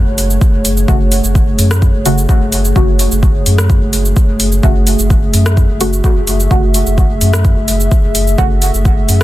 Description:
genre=dub techno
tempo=128 BPM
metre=4/4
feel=straight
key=F# minor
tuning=A4 = 439 Hz
part: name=dark analog pad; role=sustained chords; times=0.0-9.2 s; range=A3 to E5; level=-19 LUFS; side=equal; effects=chorus, sidechain pumping
part: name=warm sub bass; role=bass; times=0.0-9.2 s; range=F#1 to F#2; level=-14 LUFS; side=equal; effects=sidechain pumping
part: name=deep house drum kit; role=drums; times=0.2-9.2 s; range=cabasa, hi-hat, rim click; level=-19 LUFS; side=equal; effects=overdrive
part: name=electronic kick drum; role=drums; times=0.4-9.0 s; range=none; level=-12 LUFS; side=equal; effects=overdrive
part: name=deep mellow chord stab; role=stabs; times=0.9-8.5 s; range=C#3 to F#4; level=-20 LUFS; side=equal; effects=chorus, phaser, sidechain pumping, dub echo
room=little or no reverb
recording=dense, heavily limited modern master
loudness=-9 LUFS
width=side -15 dB against mid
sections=0.0-9.2 A section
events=none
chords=0.0 F#m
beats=0.41 | 0.88 1.35 1.82 2.29 | 2.76 3.23 3.70 4.17 | 4.63 5.10 5.57 6.04 | 6.51 6.98 7.45 7.92 | 8.38 8.85

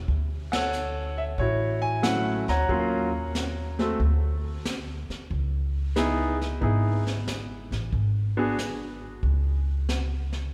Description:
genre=jazz piano trio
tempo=92 BPM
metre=4/4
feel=swing 68% on 8ths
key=C# minor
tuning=A4 = 439 Hz
part: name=upright bass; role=bass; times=0.0-10.5 s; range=G#1 to D#2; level=-30 LUFS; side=equal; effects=none
part: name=jazz brush drum kit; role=drums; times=0.1-10.5 s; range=brushed snare drum, hi-hat, kick drum, ride cymbal, snare drum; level=-36 LUFS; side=equal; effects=none
part: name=clear grand piano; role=melody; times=0.5-8.6 s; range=F#3 to A#5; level=-30 LUFS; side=equal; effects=none
room=moderate church reverb, RT60 3.2 s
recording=recorded in a church or concert hall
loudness=-27 LUFS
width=mono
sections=0.0-10.5 A section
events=band accent 0.4-0.7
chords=0.1 Dmaj9; 2.7 D#m7; 4.0 N.C.; 5.3 C#m9; 7.9 N.C.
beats=| 0.08 0.73 1.39 2.04 | 2.69 3.34 4.00 4.65 | 5.30 5.95 6.61 7.26 | 7.91 8.57 9.22 9.87 | 10.53

